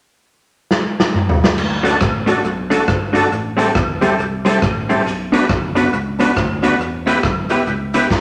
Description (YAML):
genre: ska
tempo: 138 BPM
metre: 4/4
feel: swing 62% on 8ths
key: D major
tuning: A4 = 439 Hz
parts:
  - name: raw garage drum kit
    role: drums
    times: 0.7-8.2 s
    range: crash cymbal, hi-hat, kick drum, rim click, snare drum, toms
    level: -21 LUFS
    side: equal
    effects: dub echo
  - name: fingered electric bass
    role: bass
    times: 1.6-8.2 s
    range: F#1 to E2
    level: -27 LUFS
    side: equal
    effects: none
  - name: cabasa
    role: percussion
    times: 1.6-8.2 s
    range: none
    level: -50 LUFS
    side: equal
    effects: none
  - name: vintage hollow-body jazz guitar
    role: accompaniment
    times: 1.8-8.1 s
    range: G3 to B4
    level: -21 LUFS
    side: equal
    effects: dub echo
  - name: overdriven tonewheel organ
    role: stabs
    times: 1.8-8.1 s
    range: C4 to B4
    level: -22 LUFS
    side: equal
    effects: chorus vibrato, slow rotary speaker
room: wet studio reverb, RT60 0.9 s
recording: none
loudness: -17 LUFS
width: mono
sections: 0.0-1.6 A section; 1.6-8.2 B section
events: drum fill 0.7-1.6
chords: 0.0 N.C.; 1.6 D; 3.3 Am7; 5.1 Bm; 6.8 Em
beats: 0.27 0.71 1.14 | 1.58 2.02 2.45 2.89 | 3.32 3.76 4.19 4.63 | 5.06 5.50 5.93 6.37 | 6.80 7.24 7.67 8.11